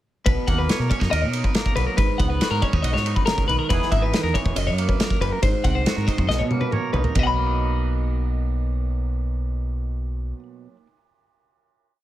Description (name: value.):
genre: math rock and midwest emo.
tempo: 139 BPM.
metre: 4/4.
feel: straight.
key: B major.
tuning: A4 = 439 Hz.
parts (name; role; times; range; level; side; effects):
twangy electric guitar; accompaniment; 0.3-11.0 s; F#2 to C#5; -29 LUFS; right 8 dB; none.
twelve-string electric guitar; arpeggios; 0.3-10.4 s; A#4 to B5; -26 LUFS; left 5 dB; none.
deep dub fingered electric bass; bass; 0.3-10.3 s; E1 to B2; -24 LUFS; equal; none.
loose indie drum kit; drums; 0.3-7.3 s; kick drum, ride cymbal, snare drum, toms; -23 LUFS; equal; none.
room: little or no reverb.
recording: none.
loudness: -20 LUFS.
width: side -14 dB against mid.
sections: 0.3-7.2 A section; 7.2-10.6 final chord.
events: drum fill 6.3-7.2.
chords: 0.3 Bmaj7; 2.0 G#m7; 3.7 Emaj7; 4.6 F#; 5.4 G#7; 6.3 Bmaj7.